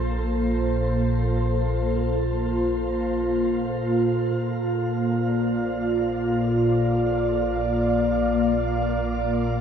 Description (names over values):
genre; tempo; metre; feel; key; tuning
ambient; free time; none; none; Bb major; A4 = 440 Hz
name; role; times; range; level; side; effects
glassy FM pad; sustained chords; 0.0-9.6 s; Bb2 to F5; -22 LUFS; equal; ensemble chorus, built-in reverb, phaser
deep rumbling drone; bass; 0.0-9.6 s; Bb1; -30 LUFS; right 1 dB; built-in reverb
pedal harmonium; drone; 4.3-9.6 s; Bb3 to F4; -42 LUFS; right 3 dB; none
room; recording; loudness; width
wet shimmer reverb, RT60 8.7 s; none; -21 LUFS; side -8 dB against mid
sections
0.0-4.3 A section; 4.3-9.6 B section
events
filter sweep on ambient pad 4.3-9.6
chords
0.0 Bbmaj7